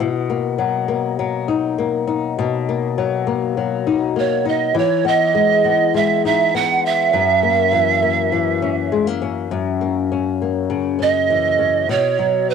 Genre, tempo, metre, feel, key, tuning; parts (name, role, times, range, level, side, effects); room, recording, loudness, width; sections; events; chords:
indie pop; 101 BPM; 4/4; straight; A4 = 444 Hz
flamenco guitar; accompaniment; 0.0-12.5 s; F#2 to D#4; -19 LUFS; left 8 dB; lush chorus, vibrato effect, cassette tape
breathy bright pan flute; melody; 4.2-12.5 s; B4 to F#5; -16 LUFS; right 9 dB; analog chorus, cassette tape, tape echo
moderate booth ambience, RT60 0.3 s; home recording on cassette; -16 LUFS; side -6 dB against mid
0.0-9.5 A section; 9.5-11.9 B section
0.0 Bmaj7; 4.8 Emaj7; 7.1 F#7; 11.9 Bmaj7(no3)